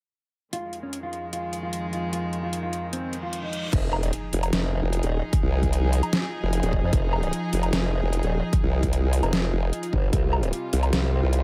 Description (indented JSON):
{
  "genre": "heavy wobble dubstep",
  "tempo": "150 BPM",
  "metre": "4/4",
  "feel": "half-time",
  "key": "F minor",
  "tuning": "A4 = 440 Hz",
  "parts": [
    { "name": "mellow electric guitar", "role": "melody", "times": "0.5-3.6 s", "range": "C4 to F4", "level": "-35 LUFS", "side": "equal", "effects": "spring reverb, tape echo" },
    { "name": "rich chamber string section", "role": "sustained chords", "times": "0.5-11.4 s", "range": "F2 to Ab4", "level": "-34 LUFS", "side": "equal", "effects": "sidechain pumping" },
    { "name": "dubstep drum kit", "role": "drums", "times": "0.5-11.4 s", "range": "crash cymbal, hi-hat, snare drum, woodblock", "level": "-31 LUFS", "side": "equal", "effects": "overdrive" },
    { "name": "reverse cymbal and impact", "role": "sound effects", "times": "3.1-5.3 s", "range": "none", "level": "-39 LUFS", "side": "equal", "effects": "none" },
    { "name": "formant-sweep wobble bass", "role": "bass", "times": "3.7-11.2 s", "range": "Eb1 to F2", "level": "-27 LUFS", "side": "equal", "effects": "chorus, overdrive" },
    { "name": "electronic kick drum", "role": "drums", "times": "3.7-10.2 s", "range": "none", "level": "-26 LUFS", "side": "equal", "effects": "overdrive" },
    { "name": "ethereal airy pad", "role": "texture", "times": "4.9-11.4 s", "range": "F4 to Ab5", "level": "-39 LUFS", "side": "equal", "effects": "none" },
    { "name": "formant-sweep wobble bass", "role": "bass", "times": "4.3-11.4 s", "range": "F1 to C2", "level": "-25 LUFS", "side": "equal", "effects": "chorus, overdrive" }
  ],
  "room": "digital ambience",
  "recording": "none",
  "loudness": "-25 LUFS",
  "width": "mono",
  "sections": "0.5-3.7 A section; 3.7-11.4 B section",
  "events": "reverse cymbal 3.1-3.7; drop 3.7-11.4; impact 3.7-5.3",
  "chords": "0.5 Fm7; 10.1 Csus4"
}